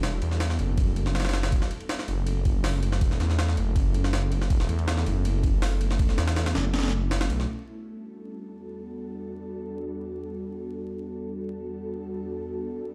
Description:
drum and bass, jungle; 161 BPM; 4/4; straight; E dorian; A4 = 440 Hz
ethereal airy pad; sustained chords; 0.0-12.9 s; E2 to A4; -37 LUFS; equal; ensemble chorus, built-in reverb
detuned saw bass; bass; 0.0-7.5 s; E1 to E2; -28 LUFS; equal
jungle sampler-style drum kit; drums; 0.0-7.5 s; hi-hat, kick drum, ride cymbal, snare drum; -30 LUFS; equal; overdrive
light reverb, digital ambience; played on a big sound system in a bare room, large studio reverb, vinyl crackle; -27 LUFS; mono
0.0-7.5 A section; 7.5-12.9 B section
filter sweep on ambient pad 7.5-12.9
0.0 Em11

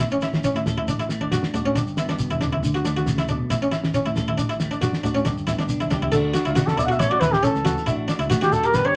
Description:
highlife guitar band; 137 BPM; 4/4; straight; D major; A4 = 441 Hz
clean electric guitar; accompaniment; 0.0-9.0 s; G2 to A4; -31 LUFS; equal
buff-stop harpsichord; arpeggios; 0.0-8.9 s; C#4 to A4; -28 LUFS; equal
fingered electric bass; bass; 0.0-8.9 s; E1 to D3; -32 LUFS; equal
cloth-damped thuddy drum kit; drums; 0.0-8.8 s; crash cymbal, kick drum, snare drum; -30 LUFS; equal
shekere; percussion; 0.1-8.8 s; -32 LUFS; equal
congas; percussion; 0.3-8.6 s; -33 LUFS; equal
dark trumpet; melody; 6.5-9.0 s; F4 to F#5; -23 LUFS; equal
wet club reverb, RT60 0.6 s; -22 LUFS; mono
0.0-6.1 A section; 6.1-9.0 B section
trumpet solo 6.1-9.0
0.0 A; 0.9 D/A; 1.8 G; 2.6 D; 3.5 A; 4.4 D/A; 5.3 G; 6.1 D; 7.0 A; 7.9 D/A

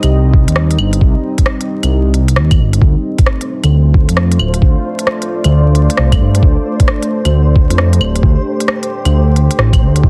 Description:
future garage; 133 BPM; 4/4; swing 65% on 16ths; D phrygian; A4 = 440 Hz
deep dark ambient pad; sustained chords; 0.0-10.1 s; G3 to Eb5; -22 LUFS; equal; chorus, built-in reverb, sidechain pumping
dark detuned saw bass; bass; 0.0-10.1 s; D1 to G2; -13 LUFS; equal; sidechain pumping
organic electronic drum kit; drums; 0.0-10.0 s; claves, hi-hat, rim click; -20 LUFS; equal; soft clipping on snare
electronic kick drum; drums; 0.3-10.1 s; -13 LUFS; equal
flickering grainy texture; texture; 3.2-10.1 s; C5; -30 LUFS; equal; built-in reverb
light reverb, digital ambience; dense, heavily limited modern master, vinyl crackle; -12 LUFS; mono
0.0-10.1 A section
0.0 Cm; 2.8 Dm7

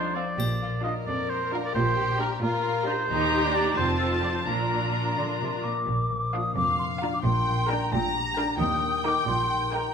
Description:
cinematic, playful, whimsical film cue; 88 BPM (dotted quarters); 6/8; straight; Bb major; A4 = 440 Hz
clear oboe; second line; 0.0-5.2 s; A4 to Eb5; -29 LUFS; right 2 dB
warm studio violin section; second line; 0.0-9.9 s; C4 to Bb5; -33 LUFS; left 1 dB
rich chamber viola section; accompaniment; 0.0-9.9 s; C4 to Bb4; -32 LUFS; right 2 dB
concert harp; arpeggios; 0.0-9.9 s; Bb2 to F5; -33 LUFS; left 8 dB
warm studio cello section; bass; 0.0-9.8 s; C2 to D3; -32 LUFS; right 2 dB
rich chamber violin section; melody; 0.2-9.9 s; F5 to Bb5; -32 LUFS; left 3 dB
rich chamber double bass section; bass; 0.4-9.8 s; F1 to Eb2; -32 LUFS; right 2 dB
triangle; percussion; 0.4-1.3 s; -40 LUFS; left 4 dB
mellow hollow silver concert flute; second line; 5.2-9.9 s; G5 to Eb6; -28 LUFS; left 2 dB
wet recital hall reverb, RT60 1.5 s; minimal, uncompressed stereo recording; -23 LUFS; side -6 dB against mid
0.0-5.9 A section; 5.9-9.9 A section
0.4 Bb; 1.8 Gm/Bb; 3.1 Eb; 3.8 F; 4.5 Bb; 7.2 Gm/Bb; 8.6 Eb

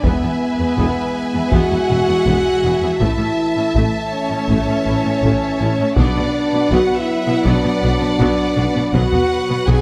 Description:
cinematic, epic orchestral film score; 81 BPM; 4/4; straight; B dorian; A4 = 440 Hz
rich studio violin section; melody; 0.0-9.8 s; B4 to G#5; -29 LUFS; equal
warm symphonic violin section; second line; 0.0-9.8 s; B4 to A5; -28 LUFS; equal
warm French horn section; sustained chords; 0.0-9.8 s; B3 to G#4; -21 LUFS; equal
warm trombone section; sustained chords; 0.0-9.8 s; E3 to B3; -29 LUFS; equal
mellow tuba; bass; 0.0-9.8 s; E1 to B1; -28 LUFS; equal
rich studio double bass section; bass; 0.0-9.7 s; E1 to B1; -25 LUFS; equal
warm symphonic cello section; bass; 0.0-9.8 s; E2 to B2; -26 LUFS; equal
taiko ensemble; drums; 0.0-9.8 s; -24 LUFS; equal
warm symphonic viola section; accompaniment; 0.1-9.8 s; F#3 to E4; -29 LUFS; equal
timpani; percussion; 6.0-7.0 s; B2; -29 LUFS; equal
light reverb; close, detailed microphones; -17 LUFS; mono
0.0-9.8 A section
0.0 E; 3.0 A; 6.0 Bm

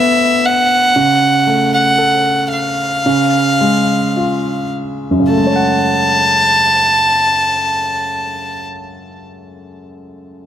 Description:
pop ballad; 51-60 BPM; 4/4; straight; F# minor; A4 = 442 Hz
warm violin; melody; 0.0-8.7 s; E5 to A5; -13 LUFS; equal
clear concert grand piano; accompaniment; 0.0-10.5 s; F#2 to F#5; -17 LUFS; equal
light reverb; -11 LUFS; side -10 dB against mid
0.0-5.3 A section; 5.3-10.1 B section
slowing down 0.0-5.3
0.0 D6; 0.9 F#mmaj7/C#; 3.0 C#; 5.3 F#madd9

